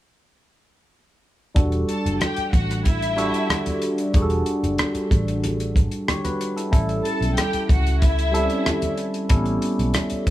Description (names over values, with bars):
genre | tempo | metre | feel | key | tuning
lush 1970s-style soul | 93 BPM | 4/4 | straight | E dorian | A4 = 439 Hz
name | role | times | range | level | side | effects
barky tine electric piano | accompaniment | 1.5-10.3 s | G3 to C#5 | -24 LUFS | equal | phaser
vintage muted fingered electric bass | bass | 1.6-10.3 s | E1 to C#2 | -23 LUFS | equal | none
warm soul drum kit | drums | 1.6-10.3 s | hi-hat, kick drum, rim click | -22 LUFS | equal | none
warm studio string section | second line | 1.9-8.9 s | E4 to A5 | -27 LUFS | left 1 dB | none
congas | percussion | 2.2-10.3 s | none | -30 LUFS | right 2 dB | none
room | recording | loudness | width
light reverb | none | -19 LUFS | side -14 dB against mid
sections
1.6-10.3 A section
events
none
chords
1.6 Em11; 6.7 A7